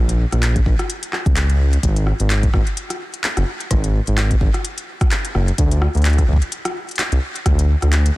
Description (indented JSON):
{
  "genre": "IDM",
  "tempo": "128 BPM",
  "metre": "4/4",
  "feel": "swing 56% on 16ths",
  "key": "unclear",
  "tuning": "A4 = 440 Hz",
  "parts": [
    { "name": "dark detuned saw bass", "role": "bass", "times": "0.0-8.1 s", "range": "F#1 to D2", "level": "-16 LUFS", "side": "equal", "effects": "none" },
    { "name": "organic electronic drum kit", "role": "drums", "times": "0.1-8.1 s", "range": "handclaps, hi-hat, rim click", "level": "-24 LUFS", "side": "left 1 dB", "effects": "digital delay" },
    { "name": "electronic kick drum", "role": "drums", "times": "0.6-7.6 s", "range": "none", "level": "-18 LUFS", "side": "equal", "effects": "none" }
  ],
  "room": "little or no reverb",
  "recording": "dense, heavily limited modern master",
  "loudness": "-16 LUFS",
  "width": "side -19 dB against mid",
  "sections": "0.0-8.2 A section",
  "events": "none",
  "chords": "none",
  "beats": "0.43 0.90 1.36 | 1.83 2.30 2.77 3.24 | 3.71 4.18 4.64 5.11 | 5.58 6.05 6.52 6.99 | 7.46 7.93"
}